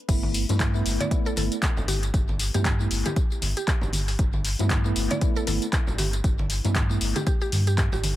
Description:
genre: deep house.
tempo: 117 BPM.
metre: 4/4.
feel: swing 58% on 16ths.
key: G major.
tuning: A4 = 440 Hz.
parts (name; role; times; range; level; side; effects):
mellow tine electric piano; stabs; 0.1-7.2 s; A3 to E4; -32 LUFS; right 1 dB; medium stereo tremolo, sidechain pumping, low-pass filter, tape echo.
sub bass with octave; bass; 0.1-8.2 s; G1 to G2; -26 LUFS; equal; sidechain pumping.
electronic kick drum; drums; 0.1-7.9 s; none; -25 LUFS; equal; none.
punchy analog drum machine; drums; 0.1-8.2 s; crash cymbal, handclaps, hi-hat, tambourine; -30 LUFS; left 1 dB; dub echo.
congas; percussion; 0.2-8.2 s; none; -34 LUFS; right 2 dB; sidechain pumping on perc, dub echo.
mallet-like synth pluck; melody; 1.0-8.2 s; G4 to D5; -34 LUFS; equal; chorus, dub echo.
room: digital ambience.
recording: echo-heavy mix.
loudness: -22 LUFS.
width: side -14 dB against mid.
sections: 0.1-8.2 A section.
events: drop 0.1-8.2.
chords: 0.1 G69.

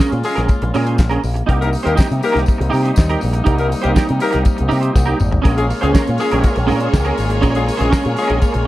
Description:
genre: disco.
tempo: 121 BPM.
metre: 4/4.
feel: straight.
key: Bb dorian.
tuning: A4 = 443 Hz.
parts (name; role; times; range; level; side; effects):
semi-hollow electric guitar; accompaniment; 0.0-8.6 s; Db4 to C5; -21 LUFS; right 4 dB; ensemble chorus.
clear woodwind section; sustained chords; 0.0-8.7 s; C3 to F4; -25 LUFS; left 1 dB; none.
picked electric bass with an envelope filter; bass; 0.0-8.6 s; Ab1 to C3; -18 LUFS; equal; none.
damped 70s drum kit; drums; 0.0-8.7 s; handclaps, hi-hat, kick drum, snare drum, toms; -16 LUFS; equal; none.
tambourine; percussion; 0.0-8.5 s; none; -38 LUFS; left 6 dB; none.
warm horn section; stabs; 0.2-8.3 s; Ab3 to Bb4; -21 LUFS; left 3 dB; none.
warm symphonic violin section; second line; 5.5-8.7 s; Bb3 to Db5; -22 LUFS; left 1 dB; none.
room: light reverb, small room ambience.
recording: dark, warm production.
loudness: -14 LUFS.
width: side -16 dB against mid.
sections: 0.0-8.7 A section.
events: drum fill 5.0-5.5.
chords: 0.0 Bbm7; 1.5 Cm7; 5.5 Bbm7.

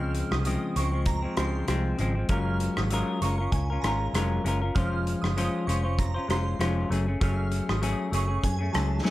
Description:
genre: indie pop, bedroom pop.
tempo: 98 BPM.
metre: 4/4.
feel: swing 55% on 16ths.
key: Db major.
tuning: A4 = 440 Hz.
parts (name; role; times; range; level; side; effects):
shimmering bell with halo; second line; 0.0-8.9 s; Ab5 to F6; -36 LUFS; right 5 dB; ensemble chorus, wide subtle chorus, slapback echo.
semi-hollow electric guitar; accompaniment; 0.0-9.1 s; Db3 to C5; -29 LUFS; left 2 dB; wide subtle chorus, vibrato effect.
vintage muted fingered electric bass; bass; 0.0-9.0 s; F1 to Gb2; -28 LUFS; equal; none.
loose indie drum kit; drums; 0.1-9.1 s; hi-hat, kick drum, rim click, snare drum; -31 LUFS; equal; none.
room: light reverb.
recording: none.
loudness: -24 LUFS.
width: side -16 dB against mid.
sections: 0.0-9.1 A section.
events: none.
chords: 0.0 Dbmaj7; 2.3 Gbmaj9; 4.8 Dbmaj7/F; 6.9 Gbmadd9.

